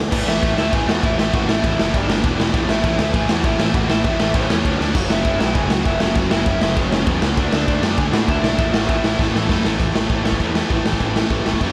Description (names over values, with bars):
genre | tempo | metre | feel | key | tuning
punk rock | 198 BPM | 4/4 | straight | A major | A4 = 439 Hz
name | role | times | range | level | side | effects
distorted electric guitar | riff | 0.0-0.1, 4.9-9.8 s | F#2 to D4 | -33 LUFS | equal | none
overdriven semi-hollow guitar | riff | 0.0-11.7 s | E2 to D4 | -28 LUFS | equal | none
tight distorted guitar | riff | 0.0-11.7 s | E2 to D4 | -28 LUFS | equal | distortion, slapback echo
fuzz picked electric bass | bass | 0.1-11.7 s | E1 to A2 | -27 LUFS | equal | overdrive
raw garage drum kit | drums | 0.1-11.7 s | crash cymbal, kick drum, ride cymbal, snare drum | -21 LUFS | equal | none
smooth overdriven lead guitar | melody | 0.3-9.6 s | C#4 to A5 | -27 LUFS | equal | slapback echo
room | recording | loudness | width
light reverb, small room ambience | none | -18 LUFS | mono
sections
0.1-9.8 A section; 9.8-11.7 B section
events
drum fill 4.8, 9.2-9.8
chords
0.1 A5; 1.9 G5; 2.2 E5; 2.5 A; 4.7 D5; 5.0 F#5; 7.4 D; 8.6 A5